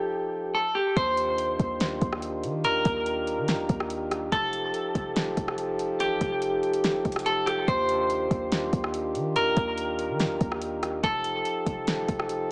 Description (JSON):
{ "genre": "hip hop, atmospheric cloud-rap", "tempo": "143 BPM", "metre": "4/4", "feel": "half-time", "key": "Eb lydian", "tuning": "A4 = 440 Hz", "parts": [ { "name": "clean electric guitar", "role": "melody", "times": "0.0-12.5 s", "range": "G4 to C5", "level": "-27 LUFS", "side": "equal", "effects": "dub echo" }, { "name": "warm French horn section", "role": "sustained chords", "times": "0.0-12.5 s", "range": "Eb3 to A4", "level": "-30 LUFS", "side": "equal", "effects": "sidechain pumping" }, { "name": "warm 808-style bass", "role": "bass", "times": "1.0-12.5 s", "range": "F1 to Eb3", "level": "-34 LUFS", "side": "equal", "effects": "none" }, { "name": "smooth R&B drum kit", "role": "drums", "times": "1.0-12.4 s", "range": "hi-hat, kick drum, rim click, snare drum", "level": "-30 LUFS", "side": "equal", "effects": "none" } ], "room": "light reverb", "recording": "echo-heavy mix, small speaker sound", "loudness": "-24 LUFS", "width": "side -30 dB against mid", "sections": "1.0-12.5 A section", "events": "break 0.0-1.0", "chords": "0.0 F9; 1.0 Ebmaj9; 4.3 F9; 7.7 Ebmaj9; 11.0 F9" }